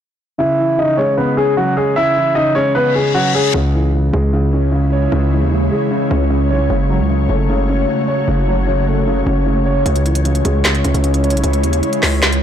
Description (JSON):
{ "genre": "hip hop, trap", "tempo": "152 BPM", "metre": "4/4", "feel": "half-time", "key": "C# minor", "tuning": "A4 = 441 Hz", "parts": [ { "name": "warm concert grand piano", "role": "melody", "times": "0.4-3.5 s", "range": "F#3 to E5", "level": "-14 LUFS", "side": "equal", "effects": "low-pass filter, digital delay" }, { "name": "dark concert grand piano", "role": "accompaniment", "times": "0.4-12.4 s", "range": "C#3 to C#5", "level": "-18 LUFS", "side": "right 1 dB", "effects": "low-pass filter" }, { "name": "reverse cymbal", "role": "sound effects", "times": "2.9-3.5 s", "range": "none", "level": "-21 LUFS", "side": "left 6 dB", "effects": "none" }, { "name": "ethereal airy pad", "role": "sustained chords", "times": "4.3-12.4 s", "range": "G#3 to C#5", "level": "-20 LUFS", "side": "left 2 dB", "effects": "ensemble chorus, built-in reverb" }, { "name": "distorted 808-style bass", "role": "bass", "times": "3.5-12.4 s", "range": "F#1 to D#2", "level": "-16 LUFS", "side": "equal", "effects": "distortion" }, { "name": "trap drum kit", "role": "drums", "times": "9.9-12.4 s", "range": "handclaps, hi-hat, snare drum", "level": "-18 LUFS", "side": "equal", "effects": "none" } ], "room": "light reverb", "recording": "blown-out, overdriven recording, overdrive", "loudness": "-13 LUFS", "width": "side -9 dB against mid", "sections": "0.4-3.5 A section; 3.5-12.4 B section", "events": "filter sweep 0.4-3.5; reverse cymbal 2.9-3.5", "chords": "0.4 C#m; 6.7 F#m; 9.9 C#m" }